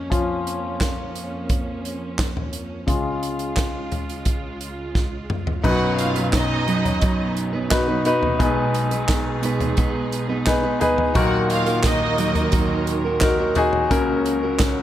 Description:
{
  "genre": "piano-driven pop",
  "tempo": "87 BPM",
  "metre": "4/4",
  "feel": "straight",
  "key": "unclear",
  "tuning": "A4 = 440 Hz",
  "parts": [
    { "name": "warm studio string section", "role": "sustained chords", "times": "0.0-14.8 s", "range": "C#2 to A#4", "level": "-29 LUFS", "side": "right 2 dB", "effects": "none" },
    { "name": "clear baby grand piano", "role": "accompaniment", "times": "0.1-14.8 s", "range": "B1 to B4", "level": "-22 LUFS", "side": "left 3 dB", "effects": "none" },
    { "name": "natural country drum kit", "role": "drums", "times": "0.1-14.8 s", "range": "crash cymbal, handclaps, hi-hat, kick drum, snare drum, toms", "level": "-23 LUFS", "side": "equal", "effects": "none" },
    { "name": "warm studio violin section", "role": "second line", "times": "5.6-12.8 s", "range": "D#4 to F#5", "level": "-26 LUFS", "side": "right 2 dB", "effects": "none" },
    { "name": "fingerpicked steel-string acoustic guitar", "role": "riff", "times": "5.6-14.8 s", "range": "F#3 to B4", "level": "-26 LUFS", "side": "right 5 dB", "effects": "none" }
  ],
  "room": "light reverb, small room ambience",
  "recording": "none",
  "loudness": "-19 LUFS",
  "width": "side -12 dB against mid",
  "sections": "0.0-5.6 A section; 5.6-14.8 B section",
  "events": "grand piano solo 0.0-5.6; drum fill 4.9-5.6",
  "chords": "0.0 A#m/E#; 2.9 C#; 5.6 B; 8.4 G#m/B; 11.2 D#m; 13.9 F#/C#"
}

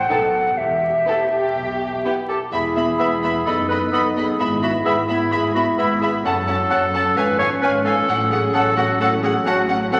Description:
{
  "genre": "cinematic",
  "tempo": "129 BPM",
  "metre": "4/4",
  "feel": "straight",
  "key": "E major",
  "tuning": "A4 = 441 Hz",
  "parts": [
    { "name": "silver concert flute", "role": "second line", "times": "0.0-10.0 s", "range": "E5 to B5", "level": "-27 LUFS", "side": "equal", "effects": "none" },
    { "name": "rich studio viola section", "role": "accompaniment", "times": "0.0-10.0 s", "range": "B3 to A4", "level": "-31 LUFS", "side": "equal", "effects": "none" },
    { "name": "rich studio double bass section", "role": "bass", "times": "0.0-10.0 s", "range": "E1 to B1", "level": "-35 LUFS", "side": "equal", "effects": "none" },
    { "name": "warm studio cello section", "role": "bass", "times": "0.0-10.0 s", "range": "E2 to B2", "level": "-32 LUFS", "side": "equal", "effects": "none" },
    { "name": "warm studio violin section", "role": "melody", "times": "0.1-10.0 s", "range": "G4 to B5", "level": "-27 LUFS", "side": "equal", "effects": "none" },
    { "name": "rich studio violin section", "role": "second line", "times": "0.1-10.0 s", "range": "B3 to F#5", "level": "-30 LUFS", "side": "equal", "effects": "none" },
    { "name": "clear clarinet", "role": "second line", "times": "2.3-10.0 s", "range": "E4 to C#5", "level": "-24 LUFS", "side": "equal", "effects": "none" },
    { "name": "mellow French horn section", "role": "sustained chords", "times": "2.5-10.0 s", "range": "E#3 to E4", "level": "-27 LUFS", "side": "equal", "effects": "none" },
    { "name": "warm oboe", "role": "second line", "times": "3.0-10.0 s", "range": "D#5 to F#5", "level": "-31 LUFS", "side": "equal", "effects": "none" },
    { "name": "warm bassoon", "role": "accompaniment", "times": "3.0-10.0 s", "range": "B3 to C#4", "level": "-31 LUFS", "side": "equal", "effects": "none" }
  ],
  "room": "wet concert hall reverb, RT60 2.3 s",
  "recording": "vinyl crackle",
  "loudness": "-19 LUFS",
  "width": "mono",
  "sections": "0.0-2.5 A section; 2.5-10.0 B section",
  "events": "none",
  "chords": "0.1 B7(no3); 0.6 Em; 2.5 E; 3.5 B/F#; 4.4 E/G#; 6.2 F#m; 7.2 C#/G#; 8.1 F#m/A"
}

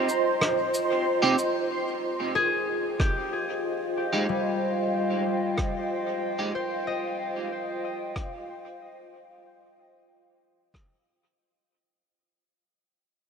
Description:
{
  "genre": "ambient dub",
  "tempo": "93 BPM",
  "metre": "4/4",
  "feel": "straight",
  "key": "unclear",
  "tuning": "A4 = 440 Hz",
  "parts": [
    { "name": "warbly tape-like pad", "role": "sustained chords", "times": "0.0-12.0 s", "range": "F4 to G5", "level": "-28 LUFS", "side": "right 1 dB", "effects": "chorus, built-in reverb" },
    { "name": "bubbling stepped-filter texture", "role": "texture", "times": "0.0-1.7 s", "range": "C6", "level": "-34 LUFS", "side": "right 3 dB", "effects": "chorus, built-in reverb" },
    { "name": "cabasa and rim click", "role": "drums", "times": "0.1-10.9 s", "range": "none", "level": "-31 LUFS", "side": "equal", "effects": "dub echo" },
    { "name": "electric guitar at the edge of break-up", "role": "stabs", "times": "1.2-6.5 s", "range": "Ab3 to G4", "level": "-31 LUFS", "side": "right 2 dB", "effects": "lush chorus, dub echo" },
    { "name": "concert harp", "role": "arpeggios", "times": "2.4-8.7 s", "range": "G3 to Eb5", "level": "-31 LUFS", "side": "left 4 dB", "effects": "low-pass filter, dub echo" },
    { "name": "electronic kick drum", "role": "drums", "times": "3.0-10.9 s", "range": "none", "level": "-28 LUFS", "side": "equal", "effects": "none" }
  ],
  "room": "wet huge ambient reverb, RT60 7.3 s",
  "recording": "none",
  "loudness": "-25 LUFS",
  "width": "side -6 dB against mid",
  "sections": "0.0-1.7 A section; 1.7-12.0 B section",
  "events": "break 0.0-1.7; fade-out 1.7-12.0",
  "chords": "0.0 Cm; 1.7 F7sus2"
}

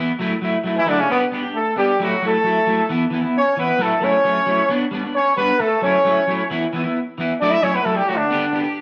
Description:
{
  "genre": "highlife",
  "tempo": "133 BPM",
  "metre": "4/4",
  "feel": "straight",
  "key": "unclear",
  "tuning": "A4 = 441 Hz",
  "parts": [
    { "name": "electric guitar at the edge of break-up", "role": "accompaniment", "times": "0.0-8.8 s", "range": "E3 to G4", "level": "-24 LUFS", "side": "equal", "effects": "lush chorus" },
    { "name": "warm horn section", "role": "melody", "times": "0.8-8.6 s", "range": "C#3 to E5", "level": "-20 LUFS", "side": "equal", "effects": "slapback echo" }
  ],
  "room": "moderate echo chamber reverb, RT60 1.4 s, small room ambience",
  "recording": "none",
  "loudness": "-19 LUFS",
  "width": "mono",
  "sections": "0.0-8.8 A section",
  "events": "horn section solo 0.0-8.8",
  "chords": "0.2 F#m7; 1.1 G; 2.0 F#m7; 2.9 E5; 3.8 F#m7; 4.7 G; 5.6 F#m7; 6.5 E5; 7.4 F#m7; 8.3 G"
}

